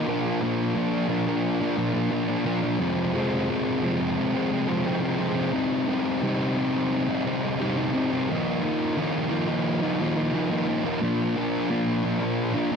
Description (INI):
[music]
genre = rock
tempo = 88 BPM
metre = 4/4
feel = straight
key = unclear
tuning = A4 = 440 Hz
[part]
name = thick fuzz guitar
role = solo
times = 0.0-12.8 s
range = F2 to Eb4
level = -23 LUFS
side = equal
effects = distortion
[sound]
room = light reverb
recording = none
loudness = -23 LUFS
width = side -6 dB against mid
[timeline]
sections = 0.0-8.3 A section; 8.3-12.8 B section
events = none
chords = 0.1 Bb; 2.8 Fm; 5.5 Cm; 8.3 Ebsus2; 11.0 Bb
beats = | 0.08 0.77 1.45 2.13 | 2.82 3.50 4.18 4.87 | 5.55 6.23 6.92 7.60 | 8.28 8.96 9.65 10.33 | 11.01 11.70 12.38